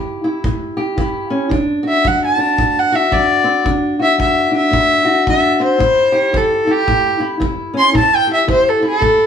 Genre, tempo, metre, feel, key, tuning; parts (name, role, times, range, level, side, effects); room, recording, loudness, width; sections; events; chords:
acoustic country blues, solo or duo; 112 BPM; 4/4; swing 62% on 8ths; A4 = 439 Hz
fingerpicked steel-string acoustic guitar; accompaniment; 0.0-9.3 s; A2 to G4; -18 LUFS; left 1 dB
kick drum; drums; 0.4-9.2 s; -23 LUFS; equal
warm fiddle; melody; 1.9-9.3 s; G4 to C6; -13 LUFS; equal
wet stone room reverb, RT60 0.9 s; band playing live in one room; -12 LUFS; side -8 dB against mid
0.0-9.3 A section
0.0 A7(no3); 1.5 D; 5.8 A7(no3)